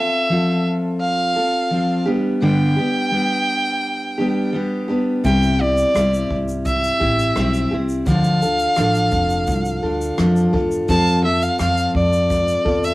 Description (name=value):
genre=acoustic pop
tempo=85 BPM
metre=4/4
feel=straight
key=C major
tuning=A4 = 443 Hz
part: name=warm violin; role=melody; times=0.0-12.9 s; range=D5 to A5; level=-20 LUFS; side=equal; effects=cassette tape, plate reverb
part: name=picked steel-string acoustic guitar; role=accompaniment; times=0.0-12.9 s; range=G2 to A4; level=-19 LUFS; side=left 1 dB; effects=cassette tape, plate reverb
part: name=upright bass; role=bass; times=5.2-12.9 s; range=F1 to F2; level=-23 LUFS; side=equal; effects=none
part: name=jazz brush drum kit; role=drums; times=5.2-12.9 s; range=kick drum, rim click, shaker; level=-28 LUFS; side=equal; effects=none
room=moderate studio reverb, RT60 0.6 s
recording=home recording on cassette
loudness=-16 LUFS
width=side -18 dB against mid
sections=0.0-12.9 A section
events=none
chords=0.0 F; 2.1 G; 5.2 C; 8.1 Dm; 10.9 F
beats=0.30 1.01 1.72 | 2.42 3.13 3.84 4.54 | 5.25 5.95 6.66 7.37 | 8.07 8.78 9.48 10.19 | 10.89 11.60 12.31